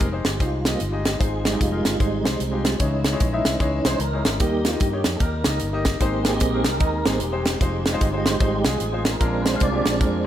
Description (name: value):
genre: uptempo gospel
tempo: 150 BPM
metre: 4/4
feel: swing 62% on 8ths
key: unclear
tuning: A4 = 440 Hz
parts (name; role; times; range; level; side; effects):
- warm grand piano; accompaniment; 0.0-10.3 s; Ab2 to Fb5; -28 LUFS; left 4 dB; none
- dark French horn section; sustained chords; 0.0-10.3 s; Eb3 to Eb4; -35 LUFS; left 1 dB; none
- mellow tonewheel organ; sustained chords; 0.0-10.3 s; Fb3 to F5; -26 LUFS; right 3 dB; fast rotary speaker, chorus vibrato
- fingered electric bass; bass; 0.0-10.2 s; Fb1 to G2; -27 LUFS; equal; none
- tight funk drum kit; drums; 0.0-10.1 s; hi-hat, kick drum, snare drum; -23 LUFS; equal; none
room: moderate echo chamber reverb, RT60 2.2 s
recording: none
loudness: -19 LUFS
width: side -11 dB against mid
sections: 0.0-10.3 A section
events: tonewheel organ solo 0.0-10.3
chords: 0.0 Fm7; 2.8 Dbmadd9; 4.4 Eb; 6.0 Abmaj7; 7.6 Fm7; 9.2 Bb7